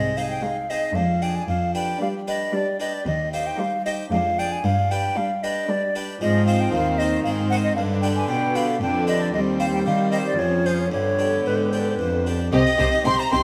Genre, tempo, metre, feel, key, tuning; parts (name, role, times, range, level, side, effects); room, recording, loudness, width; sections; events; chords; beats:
classical, baroque-style concerto movement with solo episodes; 114 BPM; 3/4; straight; C minor; A4 = 440 Hz
hollow concert flute; melody; 0.0-13.4 s; B4 to C6; -26 LUFS; equal
harpsichord; accompaniment; 0.0-13.4 s; Eb2 to Eb5; -31 LUFS; equal
warm chamber cello section; bass; 0.0-13.4 s; Eb2 to Eb3; -27 LUFS; equal
rich chamber violin section; melody; 0.4-13.4 s; G4 to C6; -38 LUFS; equal
warm chamber violin section; second line; 0.4-13.4 s; B3 to G4; -34 LUFS; equal
dark chamber viola section; accompaniment; 0.4-13.4 s; D3 to C4; -29 LUFS; equal
warm studio double bass section; bass; 12.5-13.4 s; C2; -30 LUFS; equal
moderate scoring stage reverb, RT60 1.7 s; -22 LUFS; mono
0.0-12.5 A section
0.0 Ab; 1.0 Ddim/F; 1.5 G7/F; 3.1 Cm/Eb; 4.1 Ddim/F; 4.6 G; 6.2 Ab; 7.8 G; 8.8 G7/F; 9.3 Cm/Eb; 10.4 Db/F; 10.9 G; 12.5 Cm
0.43 0.96 | 1.48 2.01 2.54 | 3.06 3.58 4.11 | 4.63 5.16 5.68 | 6.20 6.72 7.25 | 7.77 8.29 8.81 | 9.34 9.86 10.39 | 10.92 11.46 12.00 | 12.53 13.06